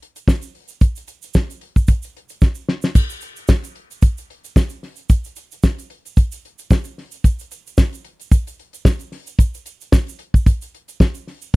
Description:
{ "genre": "disco", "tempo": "112 BPM", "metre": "4/4", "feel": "swing 56% on 16ths", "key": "none", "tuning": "none", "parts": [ { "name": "damped 70s drum kit", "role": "drums", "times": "0.0-11.6 s", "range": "crash cymbal, hi-hat, kick drum, snare drum", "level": "-13 LUFS", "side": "equal", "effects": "none" }, { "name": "tube shaker", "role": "percussion", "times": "0.2-11.5 s", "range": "none", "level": "-38 LUFS", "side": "right 11 dB", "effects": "none" } ], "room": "little or no reverb", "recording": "dry, close 1970s-style studio recording", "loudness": "-17 LUFS", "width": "side -23 dB against mid", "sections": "0.0-3.0 A section; 3.0-11.6 A section", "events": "drum fill 2.4-3.0", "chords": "none" }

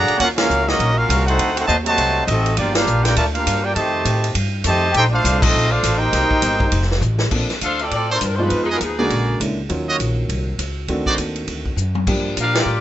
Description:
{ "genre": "jazz, big band swing", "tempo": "202 BPM", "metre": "4/4", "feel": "swing 61% on 8ths", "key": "Bb major", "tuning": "A4 = 440 Hz", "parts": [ { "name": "clear trumpet section", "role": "melody", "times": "0.0-6.9 s", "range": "Bb3 to Bb5", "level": "-18 LUFS", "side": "equal", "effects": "none" }, { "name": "bright trombone section", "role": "second line", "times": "0.0-6.9 s", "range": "C3 to G4", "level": "-24 LUFS", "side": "right 1 dB", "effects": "none" }, { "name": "upright bass", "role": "bass", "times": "0.0-12.8 s", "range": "F1 to Bb2", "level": "-21 LUFS", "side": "equal", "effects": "none" }, { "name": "swinging big-band drum kit", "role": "drums", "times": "0.1-12.6 s", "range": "crash cymbal, hi-hat, kick drum, ride cymbal, snare drum, toms", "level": "-23 LUFS", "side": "equal", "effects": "none" }, { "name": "warm baby grand piano", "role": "accompaniment", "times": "7.3-12.8 s", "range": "Db3 to A4", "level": "-23 LUFS", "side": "right 1 dB", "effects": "none" }, { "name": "warm saxophone section", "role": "melody", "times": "7.6-9.4, 12.4-12.8 s", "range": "F3 to F5", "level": "-21 LUFS", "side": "left 2 dB", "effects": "none" }, { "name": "brilliant trumpet section", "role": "stabs", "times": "8.1-12.8 s", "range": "D4 to Eb5", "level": "-22 LUFS", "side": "right 2 dB", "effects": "none" } ], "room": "light reverb", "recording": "rough home demo mix, nothing above 8.0 kHz", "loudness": "-16 LUFS", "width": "side -12 dB against mid", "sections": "0.0-7.3 A section; 7.3-12.8 B section", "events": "band accent 0.3, 2.7, 5.4, 12.5; drum fill 7.0, 11.8", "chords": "0.2 Ebm9; 1.4 D7b9; 2.6 Gm7; 3.8 F9; 4.9 Bbmaj9; 6.1 Cm7; 6.7 F9; 7.3 Bbmaj9; 8.5 Fm7b5; 9.1 Bb7alt; 9.7 Ebm9; 10.9 D7b9; 12.1 Gm7" }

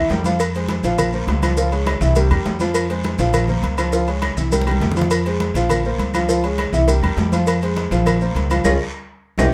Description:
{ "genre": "latin, salsa", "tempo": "204 BPM", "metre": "4/4", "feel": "straight", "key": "F minor", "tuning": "A4 = 437 Hz", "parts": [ { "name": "warm baby grand piano", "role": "accompaniment", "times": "0.0-9.5 s", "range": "E3 to F5", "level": "-23 LUFS", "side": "equal", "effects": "none" }, { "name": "upright bass", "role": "bass", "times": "0.0-9.5 s", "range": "Bb1 to F2", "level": "-23 LUFS", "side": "equal", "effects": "none" }, { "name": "congas", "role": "percussion", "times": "0.1-9.4 s", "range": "none", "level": "-29 LUFS", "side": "equal", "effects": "none" }, { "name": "cowbell", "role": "percussion", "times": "0.1-9.5 s", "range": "none", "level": "-27 LUFS", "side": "equal", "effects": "none" }, { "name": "guiro", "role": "percussion", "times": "0.1-9.5 s", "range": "none", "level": "-38 LUFS", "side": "equal", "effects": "none" }, { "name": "maracas", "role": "percussion", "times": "0.1-9.5 s", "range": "none", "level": "-37 LUFS", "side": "equal", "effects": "none" }, { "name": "timbales and agogo bells", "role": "percussion", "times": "0.1-9.5 s", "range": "none", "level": "-29 LUFS", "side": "equal", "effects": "none" }, { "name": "claves", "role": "percussion", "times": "0.4-9.5 s", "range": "none", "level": "-33 LUFS", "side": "equal", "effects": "none" } ], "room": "moderate studio reverb, RT60 0.5 s", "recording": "none", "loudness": "-19 LUFS", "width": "mono", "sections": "0.4-9.5 A section", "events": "drum fill 4.5-5.1, 9.2; band accent 8.7-9.5", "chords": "0.4 Fm; 1.0 Bbmadd9; 1.6 Db; 2.2 C7; 2.8 Fm; 3.3 Bbmadd9; 3.9 Db; 4.5 C5; 5.1 Fm; 5.7 Bbmadd9; 6.3 Db; 6.9 C7; 7.5 Fm; 8.1 Bbmadd9; 8.7 Db" }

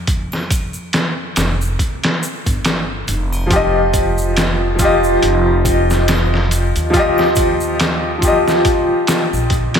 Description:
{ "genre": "trip hop", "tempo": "70 BPM", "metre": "4/4", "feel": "swing 57% on 16ths", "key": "unclear", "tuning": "A4 = 441 Hz", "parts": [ { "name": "upright bass", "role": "bass", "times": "0.0-9.7 s", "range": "F1 to F2", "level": "-20 LUFS", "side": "equal", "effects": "none" }, { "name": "trip hop sampler-style drum kit", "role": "drums", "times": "0.1-9.8 s", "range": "hi-hat, kick drum, snare drum", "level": "-18 LUFS", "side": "equal", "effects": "overdrive, studio reverb" }, { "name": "egg shaker and triangle", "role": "percussion", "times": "0.1-9.7 s", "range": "none", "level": "-30 LUFS", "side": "left 1 dB", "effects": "none" }, { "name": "clear upright piano", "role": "accompaniment", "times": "3.5-9.8 s", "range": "F3 to Eb5", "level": "-15 LUFS", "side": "left 1 dB", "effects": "tremolo, tape echo" } ], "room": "wet church reverb, RT60 3.2 s", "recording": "dreamy mix soaked in reverb", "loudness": "-13 LUFS", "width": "side -7 dB against mid", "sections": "0.0-9.8 A section", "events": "none", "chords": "0.0 Fsus2; 3.5 Eb/F" }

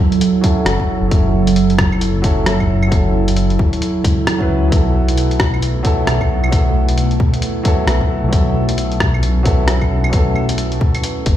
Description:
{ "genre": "future garage", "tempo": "133 BPM", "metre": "4/4", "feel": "swing 60% on 16ths", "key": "F# minor", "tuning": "A4 = 441 Hz", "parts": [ { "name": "felt-muted upright piano", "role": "accompaniment", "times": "0.0-11.4 s", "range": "F#3 to B4", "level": "-21 LUFS", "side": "equal", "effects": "sidechain pumping, low-pass filter, dub echo" }, { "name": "warbly tape-like pad", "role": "sustained chords", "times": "0.0-11.4 s", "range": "F#3 to A4", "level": "-20 LUFS", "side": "right 4 dB", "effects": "chorus, built-in reverb, phaser, sidechain pumping" }, { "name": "lo-fi sampler-style drum kit", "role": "drums", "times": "0.1-11.4 s", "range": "claves, hi-hat, rim click", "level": "-22 LUFS", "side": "left 1 dB", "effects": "small room ambience" }, { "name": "electronic kick drum", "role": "drums", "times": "0.4-11.4 s", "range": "none", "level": "-16 LUFS", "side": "left 1 dB", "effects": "small room ambience" }, { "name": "dark detuned saw bass", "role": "bass", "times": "0.7-11.4 s", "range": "F#1 to C#2", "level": "-17 LUFS", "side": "left 1 dB", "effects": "sidechain pumping" } ], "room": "light reverb", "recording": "played on a big sound system in a bare room, large studio reverb", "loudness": "-13 LUFS", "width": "side -12 dB against mid", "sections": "0.0-11.4 A section", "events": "none", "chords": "0.0 F#m7" }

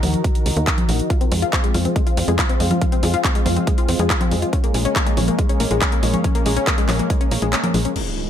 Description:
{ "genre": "uplifting trance", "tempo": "140 BPM", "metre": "4/4", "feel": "straight", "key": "Bb minor", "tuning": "A4 = 438 Hz", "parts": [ { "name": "lush unison pad", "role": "sustained chords", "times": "0.0-8.3 s", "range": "Db3 to Bb4", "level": "-25 LUFS", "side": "right 1 dB", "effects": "chorus, sidechain pumping" }, { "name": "tight sequencer bass", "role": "bass", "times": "0.0-7.9 s", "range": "Bb1 to F2", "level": "-21 LUFS", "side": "equal", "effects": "sidechain pumping" }, { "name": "big-room dance drum kit", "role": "drums", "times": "0.0-8.0 s", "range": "congas, crash cymbal, handclaps, hi-hat", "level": "-23 LUFS", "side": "left 1 dB", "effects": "overdrive" }, { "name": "electronic kick drum", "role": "drums", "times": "0.2-7.2 s", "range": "none", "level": "-19 LUFS", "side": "equal", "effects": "overdrive" }, { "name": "analog pluck", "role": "arpeggios", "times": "1.1-8.0 s", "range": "Ab3 to F4", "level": "-24 LUFS", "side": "left 5 dB", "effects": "chorus, sidechain pumping, ping-pong delay" }, { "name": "impact", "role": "sound effects", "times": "8.0-8.3 s", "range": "none", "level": "-25 LUFS", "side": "equal", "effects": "none" } ], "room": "light reverb", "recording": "none", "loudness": "-16 LUFS", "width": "side -10 dB against mid", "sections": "0.0-8.0 A section", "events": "filter sweep on analog synth pad 0.0-8.0; kick drops out 7.5-8.0; impact 8.0-8.3", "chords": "0.0 Ebm; 1.1 Fm; 4.5 Bbm7" }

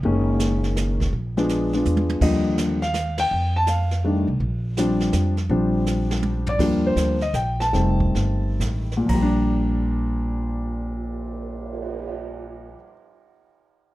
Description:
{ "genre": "jazz piano trio", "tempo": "115-165 BPM", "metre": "3/4", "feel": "swing 66% on 8ths", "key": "Bb major", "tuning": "A4 = 440 Hz", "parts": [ { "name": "warm upright piano", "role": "melody", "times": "0.0-12.9 s", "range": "Bb2 to Bb5", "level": "-22 LUFS", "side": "left 1 dB", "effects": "none" }, { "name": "upright bass", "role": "bass", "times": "0.0-12.7 s", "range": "F1 to F2", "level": "-24 LUFS", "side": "equal", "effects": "none" }, { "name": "jazz brush drum kit", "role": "drums", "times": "0.0-12.1 s", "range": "brushed snare drum, crash cymbal, cymbal swell, hi-hat, kick drum, ride cymbal, snare drum, toms", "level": "-30 LUFS", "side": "right 2 dB", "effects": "none" } ], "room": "moderate studio reverb, RT60 0.6 s", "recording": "dark, warm production", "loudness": "-20 LUFS", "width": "side -16 dB against mid", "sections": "0.0-6.6 A section; 6.6-9.1 B section; 9.1-12.2 C section", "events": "drum fill 1.9-2.2, 5.9-6.6; band accent 3.1; slowing down 6.6-9.1", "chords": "0.0 Gb6; 1.1 Bb7b9; 2.2 Ebmaj9; 3.3 Fadd9; 4.4 Bb6; 6.6 Ebmaj9; 7.7 F7; 9.1 Bb6" }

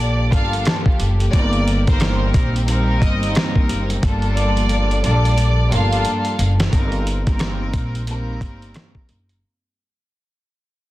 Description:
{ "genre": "hip hop, boom-bap hip-hop", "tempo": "89 BPM", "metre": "4/4", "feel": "swing 60% on 16ths", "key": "unclear", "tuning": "A4 = 440 Hz", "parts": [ { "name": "clear studio violin section", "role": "melody", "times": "0.0-6.0 s", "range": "C5 to F5", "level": "-25 LUFS", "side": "right 1 dB", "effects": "high-pass filter, low-pass filter, digital delay" }, { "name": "warm studio string section", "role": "accompaniment", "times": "0.0-9.3 s", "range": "G3 to Bb4", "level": "-24 LUFS", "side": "equal", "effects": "cassette tape, high-pass filter, low-pass filter" }, { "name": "muted studio string section", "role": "sustained chords", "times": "0.0-6.7 s", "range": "Eb3 to A4", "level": "-30 LUFS", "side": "equal", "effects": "high-pass filter, low-pass filter" }, { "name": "upright bass", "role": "bass", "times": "0.0-9.4 s", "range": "F#1 to Bb1", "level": "-19 LUFS", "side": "equal", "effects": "none" }, { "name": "dusty soul sampler-style drum kit", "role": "drums", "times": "0.3-9.4 s", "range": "hi-hat, kick drum, rim click, snare drum", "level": "-20 LUFS", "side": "equal", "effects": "none" } ], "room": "light reverb", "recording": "dense, heavily limited modern master, vinyl crackle", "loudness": "-16 LUFS", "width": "side -16 dB against mid", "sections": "0.0-6.7 A section; 6.7-9.4 B section", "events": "drum fill 4.0-6.7; fade-out 6.7-9.4", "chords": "0.0 Gm9; 1.3 Cm7/G; 4.0 Gm9; 6.7 Cm7/G" }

